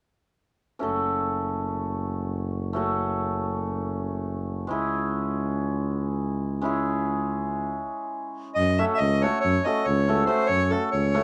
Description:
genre	balkan folk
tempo	279 BPM (eighths)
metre	9/8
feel	straight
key	F# minor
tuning	A4 = 441 Hz
part	hammered dulcimer	accompaniment	0.8-11.2 s	G#3 to A4	-30 LUFS	equal	none
part	mellow tuba	bass	0.8-11.2 s	F#1 to F#2	-30 LUFS	equal	none
part	accordion	melody	8.6-11.2 s	A4 to E5	-27 LUFS	equal	none
room	light reverb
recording	worn, warbling old tape, cassette tape, warbly pitch drift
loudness	-26 LUFS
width	mono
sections	0.8-8.6 A section; 8.6-11.2 B section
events	stop 7.9-8.6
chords	0.8 F#m; 4.7 C#m; 8.6 F#m

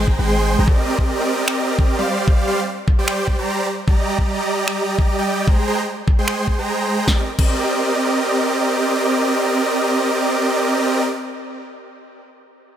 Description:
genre	future bass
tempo	150 BPM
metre	4/4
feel	swing 55% on 16ths, half-time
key	C minor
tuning	A4 = 440 Hz
part	supersaw chords	riff	0.0-11.0 s	G3 to C6	-18 LUFS	right 1 dB	sidechain pumping, tape echo
part	warm 808-style bass	bass	0.0-0.7 s	Ab1	-18 LUFS	equal	sidechain pumping
part	electronic kick drum	drums	0.1-7.5 s	none	-17 LUFS	equal	none
part	big-room dance drum kit	drums	1.5-7.5 s	crash cymbal, finger snaps, snare drum	-24 LUFS	equal	none
room	light reverb, digital ambience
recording	none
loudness	-16 LUFS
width	side -10 dB against mid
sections	0.0-7.1 A section; 7.1-10.3 B section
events	none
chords	0.0 Abmaj7; 0.7 Cm7; 2.1 G7sus4; 3.7 Ebmaj7/G; 5.5 Abmaj7; 7.1 Cm7

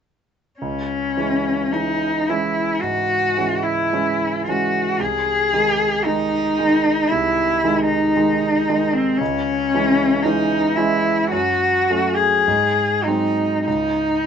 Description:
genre	classical, romantic duo for cello and grand piano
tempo	47-58 BPM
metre	4/4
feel	rubato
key	C# minor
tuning	A4 = 440 Hz
part	rich cello	melody	0.6-14.3 s	B#3 to G#4	-18 LUFS	left 2 dB	none
part	warm concert grand piano	accompaniment	0.6-14.3 s	B#1 to D#4	-23 LUFS	right 4 dB	none
room	light reverb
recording	nothing above 7.9 kHz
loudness	-17 LUFS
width	side -7 dB against mid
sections	0.6-14.3 A section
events	none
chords	0.6 C#m; 5.0 G#/B#; 9.2 C#m; 11.3 F#m; 12.5 G#7; 13.7 N.C.

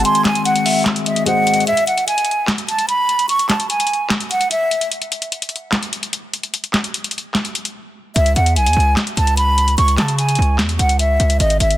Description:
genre	hip hop, trap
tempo	148 BPM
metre	4/4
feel	half-time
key	C# minor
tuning	A4 = 440 Hz
part	breathy mellow silver concert flute	melody	0.0-4.9, 8.2-11.8 s	D#5 to C#6	-17 LUFS	right 1 dB	tape echo
part	warm velvety synth lead	second line	0.0-1.6 s	D#5 to G#5	-25 LUFS	left 2 dB	chorus, tape echo
part	felt-muted upright piano	accompaniment	0.0-1.7 s	G#3 to B#4	-26 LUFS	left 6 dB	none
part	pipe organ, stopped flute	sustained chords	0.0-1.6 s	D#3 to F#4	-22 LUFS	left 5 dB	none
part	distorted 808-style bass	bass	0.0, 8.2-11.8 s	G#1 to C#3	-16 LUFS	equal	distortion
part	booming analog drum machine	drums	0.0-11.8 s	handclaps, hi-hat, snare drum	-20 LUFS	left 1 dB	none
room	light reverb, small room ambience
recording	dense, heavily limited modern master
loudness	-15 LUFS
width	side -14 dB against mid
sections	0.0-1.7 A section; 1.7-11.8 B section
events	break 0.1-1.7, 1.7-8.2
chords	0.0 G#7; 1.7 N.C.; 8.2 C#m

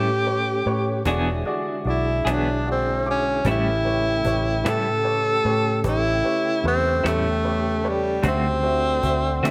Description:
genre	slow blues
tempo	50 BPM (dotted quarters)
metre	12/8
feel	straight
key	A mixolydian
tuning	A4 = 440 Hz
part	clear tenor saxophone	melody	0.0-9.5 s	G3 to A4	-25 LUFS	equal	slapback echo
part	clean electric guitar	accompaniment	0.0-9.5 s	A2 to G#4	-31 LUFS	equal	tremolo, slapback echo
part	clear upright piano	accompaniment	0.0-9.5 s	F#4 to D6	-32 LUFS	equal	slapback echo
part	tonewheel organ	sustained chords	0.0-9.5 s	C#3 to G4	-33 LUFS	equal	slow rotary speaker, overdrive
part	vintage muted fingered electric bass	bass	0.0-9.5 s	E1 to D3	-28 LUFS	equal	none
part	cajon	drums	0.3-9.5 s	none	-33 LUFS	equal	none
room	moderate lush hall reverb, RT60 2.8 s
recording	big arena sound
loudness	-22 LUFS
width	mono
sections	0.0-3.4 A section; 3.4-9.5 B section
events	tenor saxophone solo 3.4-9.5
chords	0.0 A7; 1.1 E7; 3.4 A7; 8.2 D7

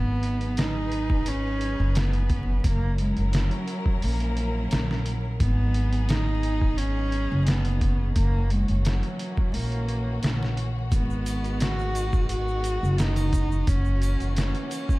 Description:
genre	trip hop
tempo	87 BPM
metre	4/4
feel	straight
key	G# minor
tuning	A4 = 439 Hz
part	dark cello	melody	0.0-15.0 s	F#3 to F#4	-30 LUFS	right 1 dB	tape echo
part	clear studio string section	sustained chords	0.0-15.0 s	D#3 to B4	-36 LUFS	left 1 dB	none
part	upright bass	bass	0.0-14.5 s	F#1 to A#1	-25 LUFS	equal	none
part	trip hop sampler-style drum kit	drums	0.2-15.0 s	hi-hat, kick drum, snare drum	-27 LUFS	equal	none
part	egg shaker and triangle	percussion	10.9-15.0 s	none	-45 LUFS	right 6 dB	none
room	studio reverb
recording	dark, warm production, vinyl crackle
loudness	-22 LUFS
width	side -20 dB against mid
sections	0.0-15.0 A section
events	none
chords	0.0 G#m7; 2.6 F#7; 5.4 G#m7; 8.2 F#7; 10.9 G#m7; 13.7 F#7

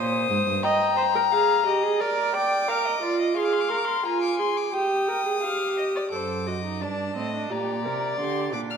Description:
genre	classical, baroque-style fugue for string quartet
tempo	87 BPM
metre	4/4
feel	straight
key	unclear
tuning	A4 = 440 Hz
part	warm violin	melody	0.0-8.8 s	A5 to F6	-27 LUFS	left 9 dB	none
part	dark violin	second line	0.0-8.8 s	C5 to Ab5	-28 LUFS	left 1 dB	none
part	dark cello	bass	0.0-0.6, 6.1-8.8 s	F#2 to D3	-31 LUFS	right 5 dB	none
part	warm viola	accompaniment	0.6-8.8 s	C4 to Eb5	-26 LUFS	right 4 dB	none
room	wet recital hall reverb, RT60 1.7 s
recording	none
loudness	-22 LUFS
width	side -6 dB against mid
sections	0.0-6.1 A section; 6.1-8.8 B section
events	none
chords	0.0 Ab (rootless); 0.6 Eb; 2.0 Bb; 3.4 Bb7/Ab; 4.7 Eb/G; 6.1 D7/F#; 7.5 Gm/Bb

